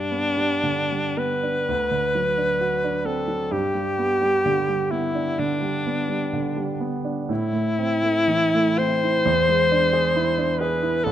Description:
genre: classical, romantic duo for alto saxophone and grand piano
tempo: 54-68 BPM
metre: 4/4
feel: rubato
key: G major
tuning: A4 = 440 Hz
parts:
  - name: bright alto saxophone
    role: melody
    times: 0.0-11.1 s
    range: D4 to C5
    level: -21 LUFS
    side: left 2 dB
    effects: none
  - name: warm concert grand piano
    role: accompaniment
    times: 0.0-11.1 s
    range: A1 to G#4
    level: -25 LUFS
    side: right 3 dB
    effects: none
room: moderate scoring stage reverb, RT60 1.8 s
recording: close, detailed microphones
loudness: -20 LUFS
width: side -11 dB against mid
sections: 0.0-11.1 A section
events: none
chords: 0.0 G; 1.7 D7; 3.5 G; 7.3 Am; 9.3 E7

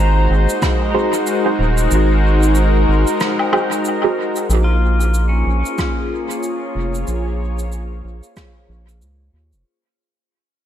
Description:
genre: ambient dub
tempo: 93 BPM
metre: 4/4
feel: swing 60% on 16ths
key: Bb minor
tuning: A4 = 439 Hz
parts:
  - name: warm analog pad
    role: sustained chords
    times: 0.0-9.7 s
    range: Ab3 to Db5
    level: -19 LUFS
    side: left 1 dB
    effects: lush chorus
  - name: pedal steel guitar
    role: arpeggios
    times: 0.0-7.9 s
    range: Db4 to Bb5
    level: -27 LUFS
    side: left 3 dB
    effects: diffuse ambient delay
  - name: round analog bass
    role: bass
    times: 0.0-9.6 s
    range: Eb1 to Eb2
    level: -16 LUFS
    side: equal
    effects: none
  - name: cabasa, rim click and woodblock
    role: drums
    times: 0.5-9.6 s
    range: none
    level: -26 LUFS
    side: left 1 dB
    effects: dub echo
  - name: electronic kick drum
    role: drums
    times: 0.6-0.8, 5.8-8.5 s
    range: none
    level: -21 LUFS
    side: equal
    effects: overdrive
  - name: filtered dub chord stab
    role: stabs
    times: 0.9-4.1 s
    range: Gb4 to C5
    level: -23 LUFS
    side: right 3 dB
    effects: phaser, dub echo
room: moderate plate reverb, RT60 2.7 s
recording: dreamy mix soaked in reverb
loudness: -14 LUFS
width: side -10 dB against mid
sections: 0.0-4.5 A section; 4.5-9.7 B section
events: break 3.2-4.5; fade-out 4.5-9.7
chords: 0.0 Ab7; 4.5 Bbm7

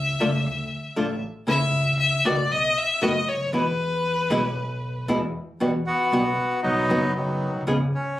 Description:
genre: tango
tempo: 117 BPM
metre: 4/4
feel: rubato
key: unclear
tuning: A4 = 440 Hz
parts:
  - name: rich violin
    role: second line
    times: 0.0-5.1 s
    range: B4 to E5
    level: -24 LUFS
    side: left 2 dB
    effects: none
  - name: upright bass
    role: bass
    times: 0.0-7.9 s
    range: F#1 to E2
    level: -28 LUFS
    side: equal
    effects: none
  - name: flamenco guitar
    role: accompaniment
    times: 0.2-7.8 s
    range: B2 to G#4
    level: -24 LUFS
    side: equal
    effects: none
  - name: bandoneon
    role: melody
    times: 5.9-8.2 s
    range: D#3 to F#4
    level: -23 LUFS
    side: equal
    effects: none
room: moderate club reverb, RT60 0.6 s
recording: recorded on a phone in the room, club reverb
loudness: -21 LUFS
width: side -14 dB against mid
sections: 0.0-5.6 A section; 5.6-8.2 B section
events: violin solo 0.0-5.6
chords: 0.5 D5; 1.5 A/C#; 2.5 B; 3.5 E; 5.6 Emadd9; 6.6 B; 7.7 C#7

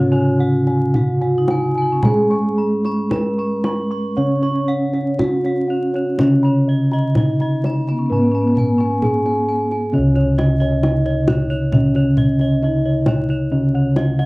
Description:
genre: Javanese gamelan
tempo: 55-67 BPM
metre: 4/4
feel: straight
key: Db slendro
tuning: A4 = 439 Hz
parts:
  - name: gamelan-type bronze metallophone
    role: melody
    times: 0.0-14.3 s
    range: Db4 to Db5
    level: -21 LUFS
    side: equal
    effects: plate reverb
  - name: vibraphone with medium hard mallets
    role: second line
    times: 0.0-9.7 s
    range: Cb4-45c to Gb4-35c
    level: -24 LUFS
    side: left 1 dB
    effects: cassette tape, plate reverb
  - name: gamelan-type bronze metallophone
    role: accompaniment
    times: 0.0-14.3 s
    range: Db3 to Db4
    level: -19 LUFS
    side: equal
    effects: cassette tape
  - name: gamelan-type bossed gongs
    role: arpeggios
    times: 0.0-14.3 s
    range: Db5 to Db6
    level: -30 LUFS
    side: left 2 dB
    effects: cassette tape
  - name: gamelan-type bronze metallophone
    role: arpeggios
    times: 0.0-14.3 s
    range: Db5 to Db6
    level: -28 LUFS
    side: right 2 dB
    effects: cassette tape, plate reverb
  - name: gamelan-type bossed gongs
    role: bass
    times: 0.0-14.3 s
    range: Db2 to Ab4+25c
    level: -24 LUFS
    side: equal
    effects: none
  - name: kendang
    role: percussion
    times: 0.1-14.3 s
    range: none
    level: -22 LUFS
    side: equal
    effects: none
room: moderate small room reverb, RT60 0.5 s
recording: home recording on cassette, vinyl crackle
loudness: -15 LUFS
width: side -23 dB against mid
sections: 0.0-9.9 A section; 9.9-14.3 B section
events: none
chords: none

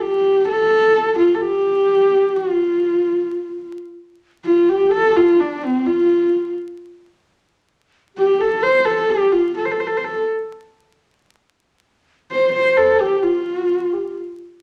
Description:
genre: mongolian traditional, Mongolian folk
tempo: 129 BPM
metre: 4/4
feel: straight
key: F gong mode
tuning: A4 = 440 Hz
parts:
  - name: dark horsehead fiddle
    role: melody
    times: 0.0-14.2 s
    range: C4 to C5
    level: -18 LUFS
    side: equal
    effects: none
  - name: low xiao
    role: second line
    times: 4.4-14.2 s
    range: C4 to C5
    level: -24 LUFS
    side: equal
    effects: none
room: wet club reverb, RT60 0.8 s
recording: vinyl crackle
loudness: -17 LUFS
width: mono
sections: 0.0-4.2 A section; 4.2-14.6 B section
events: none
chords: none

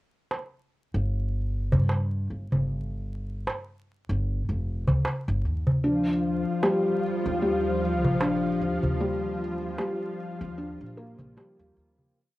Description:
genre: trip hop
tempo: 76 BPM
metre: 4/4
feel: swing 57% on 16ths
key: unclear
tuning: A4 = 438 Hz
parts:
  - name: darbuka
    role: percussion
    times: 0.3-12.1 s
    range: none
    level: -27 LUFS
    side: equal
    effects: none
  - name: upright bass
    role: bass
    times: 0.9-12.1 s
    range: F1 to G2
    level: -29 LUFS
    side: equal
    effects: transformer saturation
  - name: string machine, cellos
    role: sustained chords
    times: 5.8-12.2 s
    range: F3 to F4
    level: -29 LUFS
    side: left 1 dB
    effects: ensemble chorus, cassette tape
  - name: felt-muted upright piano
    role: arpeggios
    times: 5.8-12.2 s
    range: G3 to D4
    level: -28 LUFS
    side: left 1 dB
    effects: cassette tape, tape echo
room: light reverb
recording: home recording on cassette, vinyl crackle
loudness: -25 LUFS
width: side -17 dB against mid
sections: 0.0-12.2 groove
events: fade-out 8.0-12.2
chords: 0.0 G5; 5.8 Ebmaj7

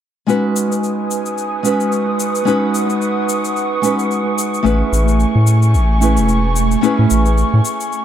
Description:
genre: sunset chillout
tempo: 110 BPM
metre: 4/4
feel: swing 56% on 16ths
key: B mixolydian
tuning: A4 = 440 Hz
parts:
  - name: nylon-string guitar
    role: accompaniment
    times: 0.3-8.0 s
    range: G#3 to B4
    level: -18 LUFS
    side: moving between left 3 dB and right 4 dB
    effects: auto-pan, analog delay
  - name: airy breathy pad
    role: sustained chords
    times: 0.3-8.0 s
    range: A3 to D#6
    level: -20 LUFS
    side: right 3 dB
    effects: chorus
  - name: cabasa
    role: drums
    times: 0.3-8.0 s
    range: none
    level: -26 LUFS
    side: left 6 dB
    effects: overdrive, studio reverb
  - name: wind-like tuned noise texture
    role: texture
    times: 1.5-8.0 s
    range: C#6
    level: -28 LUFS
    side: right 2 dB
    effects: built-in reverb
  - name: round analog bass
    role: bass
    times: 4.6-7.6 s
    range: E1 to A2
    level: -13 LUFS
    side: equal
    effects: tube saturation
room: moderate spring reverb, RT60 2.2 s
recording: echo-heavy mix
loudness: -13 LUFS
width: side -10 dB against mid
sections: 0.3-8.0 A section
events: none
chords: 0.3 B6; 4.7 Amaj7

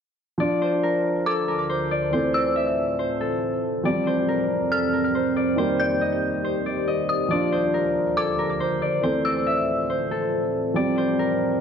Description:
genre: hip hop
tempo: 139 BPM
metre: 4/4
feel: half-time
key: D minor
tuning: A4 = 440 Hz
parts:
  - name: Celtic harp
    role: melody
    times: 0.4-11.6 s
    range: A4 to E5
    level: -24 LUFS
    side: left 2 dB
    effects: low-pass filter, analog delay
  - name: dark grand piano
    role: accompaniment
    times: 0.4-11.6 s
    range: Eb3 to A4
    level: -27 LUFS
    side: right 2 dB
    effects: low-pass filter, analog delay
  - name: deep dark ambient pad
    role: sustained chords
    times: 1.5-11.6 s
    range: D2 to A5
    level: -28 LUFS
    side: right 2 dB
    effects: chorus, built-in reverb
  - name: dark detuned synth bell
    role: second line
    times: 1.3-9.9 s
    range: D6 to G6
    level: -28 LUFS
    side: left 1 dB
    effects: chorus, analog delay
room: moderate spring reverb, RT60 1.9 s, small room ambience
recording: echo-heavy mix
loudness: -21 LUFS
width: side -7 dB against mid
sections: 0.4-11.6 A section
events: none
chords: 0.4 Dm; 2.1 Am; 3.9 Fsus2; 5.6 Eb; 7.3 Dm; 9.0 Am; 10.8 Fsus2

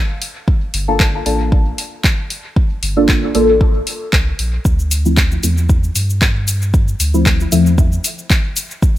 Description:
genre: dub techno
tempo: 115 BPM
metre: 4/4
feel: swing 55% on 16ths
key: G minor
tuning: A4 = 440 Hz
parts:
  - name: deep house drum kit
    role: drums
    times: 0.2-8.9 s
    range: handclaps, hi-hat, shaker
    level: -19 LUFS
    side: left 1 dB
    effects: studio reverb
  - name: electronic kick drum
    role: drums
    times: 0.5-8.9 s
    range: none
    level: -14 LUFS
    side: equal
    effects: studio reverb
  - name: soft dub sub bass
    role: bass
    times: 0.7-8.0 s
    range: G1 to G2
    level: -18 LUFS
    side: equal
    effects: sidechain pumping
  - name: deep mellow chord stab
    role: stabs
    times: 0.9-7.7 s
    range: F3 to A4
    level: -16 LUFS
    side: left 1 dB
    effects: chorus, phaser, dub echo
room: little or no reverb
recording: none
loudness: -13 LUFS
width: side -14 dB against mid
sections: 0.0-9.0 A section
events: none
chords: 0.0 Gm9; 4.7 Dm9

